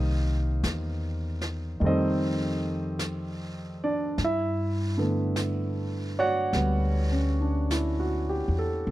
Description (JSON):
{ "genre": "jazz ballad", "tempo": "51 BPM", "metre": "4/4", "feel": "swing 68% on 8ths", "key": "unclear", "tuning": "A4 = 440 Hz", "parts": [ { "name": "warm concert grand piano", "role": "accompaniment", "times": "0.0-8.9 s", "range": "D3 to F#5", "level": "-28 LUFS", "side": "right 1 dB", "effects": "none" }, { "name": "upright bass", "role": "bass", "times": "0.0-8.9 s", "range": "A1 to G2", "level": "-28 LUFS", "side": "equal", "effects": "none" }, { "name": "jazz brush drum kit", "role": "drums", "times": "0.6-8.9 s", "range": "brushed snare drum, hi-hat, snare drum", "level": "-38 LUFS", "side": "equal", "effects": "none" } ], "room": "small room reverb", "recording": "dry, close 1970s-style studio recording", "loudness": "-25 LUFS", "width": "side -16 dB against mid", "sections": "0.0-8.9 A section", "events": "none", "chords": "0.0 Cm7; 1.8 F9; 4.2 Gmaj9#11" }